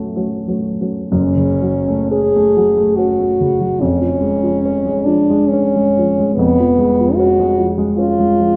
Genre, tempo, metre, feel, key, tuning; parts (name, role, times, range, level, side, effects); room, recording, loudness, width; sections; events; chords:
classical, romantic duo for French horn and grand piano; 58-78 BPM; 3/4; rubato; A4 = 440 Hz
dark French horn; melody; 0.0-8.6 s; A3 to G#4; -17 LUFS; equal
dark grand piano; accompaniment; 0.0-8.6 s; E#1 to C#4; -19 LUFS; equal
wet recital hall reverb, RT60 1.6 s; -15 LUFS; mono
0.0-1.1 A section; 1.1-8.6 B section
0.0 F#m; 3.8 C#/E#